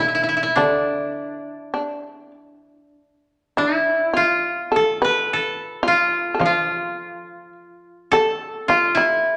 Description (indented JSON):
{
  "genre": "japanese traditional, Japanese chamber music",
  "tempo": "49-54 BPM",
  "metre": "4/4",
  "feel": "rubato",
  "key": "D kumoi",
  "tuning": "A4 = 437 Hz",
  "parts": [
    { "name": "koto", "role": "melody", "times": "0.0-9.4 s", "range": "D4 to E5", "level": "-21 LUFS", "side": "equal", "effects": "none" },
    { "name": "shamisen", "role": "second line", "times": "0.0-9.4 s", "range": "D4 to B4", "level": "-26 LUFS", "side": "equal", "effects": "none" },
    { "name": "koto", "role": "accompaniment", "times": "0.0-9.4 s", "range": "B2 to F3", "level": "-30 LUFS", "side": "equal", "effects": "none" }
  ],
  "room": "wet recital hall reverb, RT60 1.5 s",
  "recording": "none",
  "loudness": "-20 LUFS",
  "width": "mono",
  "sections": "0.0-9.4 A section",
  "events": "none",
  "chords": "none"
}